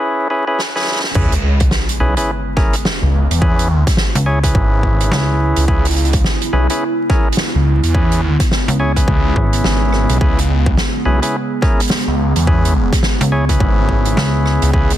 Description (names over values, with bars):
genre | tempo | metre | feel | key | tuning
glitch hop | 106 BPM | 4/4 | swing 60% on 16ths | C# minor | A4 = 440 Hz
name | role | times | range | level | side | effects
percussive tonewheel organ | stabs | 0.0-14.9 s | C#4 to C#5 | -20 LUFS | equal | overdrive, sidechain pumping, dub echo
loose indie drum kit | drums | 0.6-15.0 s | crash cymbal, hi-hat, rim click, snare drum | -21 LUFS | right 1 dB | none
warbly tape-like pad | sustained chords | 1.9-15.0 s | C#3 to G#4 | -22 LUFS | right 1 dB | chorus, built-in reverb, sidechain pumping
phased detuned saw bass | bass | 1.2-15.0 s | G#1 to E2 | -15 LUFS | equal | phaser
electronic kick drum | drums | 1.2-14.9 s | none | -16 LUFS | equal | overdrive
sub drop | sound effects | 1.2-3.4 s | none | -22 LUFS | equal | none
slap-like FM bass | bass | 4.2-9.6, 13.2-14.6 s | G#1 to C#2 | -16 LUFS | equal | none
room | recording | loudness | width
studio reverb | dense, heavily limited modern master, vinyl crackle, high-pass filter | -12 LUFS | side -12 dB against mid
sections
0.0-1.2 A section; 1.2-15.0 B section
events
break 0.0-1.2; build-up 0.0-1.2; filter sweep 0.0-1.2; drum fill 0.6-1.2; drop 1.2-15.0; impact 1.2-3.4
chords
0.0 C#m7